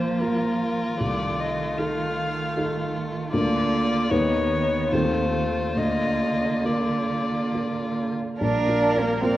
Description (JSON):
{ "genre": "classical, slow romantic movement for piano quintet", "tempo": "67-79 BPM", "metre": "3/4", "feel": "rubato", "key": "Bb major", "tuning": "A4 = 440 Hz", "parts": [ { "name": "rich violin", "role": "melody", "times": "0.0-9.4 s", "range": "Bb4 to F5", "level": "-28 LUFS", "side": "left 3 dB", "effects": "none" }, { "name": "rich cello", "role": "second line", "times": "0.0-9.4 s", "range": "D3 to D4", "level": "-28 LUFS", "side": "right 3 dB", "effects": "none" }, { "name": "rich violin", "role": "second line", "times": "0.0-9.4 s", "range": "D#4 to Bb4", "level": "-31 LUFS", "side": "left 2 dB", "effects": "none" }, { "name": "clear viola", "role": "accompaniment", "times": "0.0-9.4 s", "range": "A3 to D5", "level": "-28 LUFS", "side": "right 2 dB", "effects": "none" }, { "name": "dark baby grand piano", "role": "accompaniment", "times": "0.0-9.4 s", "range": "Bb1 to B4", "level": "-27 LUFS", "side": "equal", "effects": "none" } ], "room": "wet recital hall reverb, RT60 1.3 s", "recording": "worn, warbling old tape, cassette tape, warbly pitch drift", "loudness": "-22 LUFS", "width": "side -14 dB against mid", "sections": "0.0-8.4 A section", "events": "none", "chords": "0.0 Bb5; 1.0 F7/C; 3.3 Bb/D; 4.1 B/D#; 4.9 F7/Eb; 5.8 Bb/D; 8.4 Bb" }